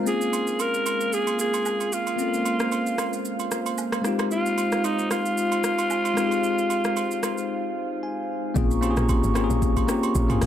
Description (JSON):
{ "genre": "amapiano", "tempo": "113 BPM", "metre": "4/4", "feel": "swing 55% on 16ths", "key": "Bb dorian", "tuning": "A4 = 439 Hz", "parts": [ { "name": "bell-like tine electric piano", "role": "accompaniment", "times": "0.0-10.5 s", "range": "Ab3 to Ab5", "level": "-27 LUFS", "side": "left 4 dB", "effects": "auto-pan" }, { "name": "glass harmonica", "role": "sustained chords", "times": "0.0-10.5 s", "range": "Ab3 to Db6", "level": "-31 LUFS", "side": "right 5 dB", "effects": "sidechain pumping" }, { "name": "growling alto saxophone", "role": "melody", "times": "0.1-8.0 s", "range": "Eb4 to Bb4", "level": "-26 LUFS", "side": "equal", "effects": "tape echo" }, { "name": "deep house drum kit", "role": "drums", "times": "0.1-10.5 s", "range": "hi-hat, kick drum, rim click, shaker, toms", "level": "-30 LUFS", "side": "right 1 dB", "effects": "overdrive" }, { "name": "agogo bells and woodblock", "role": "percussion", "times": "0.3-10.4 s", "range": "none", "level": "-35 LUFS", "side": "right 10 dB", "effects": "none" }, { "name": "deep log drum bass", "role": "bass", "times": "8.6-10.5 s", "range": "Ab1 to Bb1", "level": "-24 LUFS", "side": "right 1 dB", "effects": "none" } ], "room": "light reverb, digital ambience", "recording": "none", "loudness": "-22 LUFS", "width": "side -10 dB against mid", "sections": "0.0-8.6 A section; 8.6-10.5 B section", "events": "break 7.5-8.6; tine electric piano fill 7.8-8.6; drop 8.6-10.5", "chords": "0.1 Bbm7; 4.0 Fm7; 8.6 Bbm7", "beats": "| 0.06 0.59 1.13 1.66 | 2.19 2.72 3.25 3.78 | 4.31 4.84 5.37 5.91 | 6.44 6.97 7.50 8.03 | 8.56 9.09 9.62 10.15" }